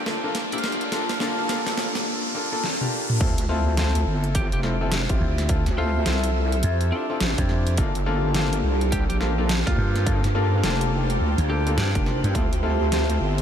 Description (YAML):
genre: glitch hop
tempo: 105 BPM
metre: 4/4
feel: swing 62% on 16ths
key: D minor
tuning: A4 = 439 Hz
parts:
  - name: lightly driven lead guitar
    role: melody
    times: 0.0-12.4 s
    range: D4 to G4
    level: -34 LUFS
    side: equal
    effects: ping-pong delay
  - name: clear concert grand piano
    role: stabs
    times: 0.0-13.4 s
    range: Bb3 to A4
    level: -27 LUFS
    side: left 3 dB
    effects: vintage 12-bit sampler grit, sidechain pumping, ping-pong delay
  - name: wobble bass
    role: bass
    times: 0.0-13.4 s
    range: F1 to G2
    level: -24 LUFS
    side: right 1 dB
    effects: chorus, overdrive, high-pass filter
  - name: riser, swell and sub drop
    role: sound effects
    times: 0.0-5.5 s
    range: none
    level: -33 LUFS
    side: right 1 dB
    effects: none
  - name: granular cloud pad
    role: texture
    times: 0.0-13.4 s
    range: D4 to F5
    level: -32 LUFS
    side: right 1 dB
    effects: built-in reverb, wide subtle chorus, sidechain pumping
  - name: dubstep drum kit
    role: drums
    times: 0.1-13.4 s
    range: crash cymbal, hi-hat, snare drum, toms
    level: -29 LUFS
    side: right 1 dB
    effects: overdrive
  - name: electronic kick drum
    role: drums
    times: 3.2-12.5 s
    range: none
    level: -25 LUFS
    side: right 1 dB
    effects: overdrive
  - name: slap bass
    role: bass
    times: 5.2-12.3 s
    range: D2 to G2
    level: -22 LUFS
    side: right 1 dB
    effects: none
room: light reverb, digital ambience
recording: none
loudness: -20 LUFS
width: side -9 dB against mid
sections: 0.0-3.2 A section; 3.2-13.4 B section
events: build-up 0.0-3.2; drum fill 0.0-2.1, 2.6-3.2; riser 0.0-3.2; swell 2.1-3.2; drop 3.2-13.4; impact 3.2-5.5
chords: 0.0 Gm9; 3.2 Dm7; 7.8 Gm9; 12.4 Dm7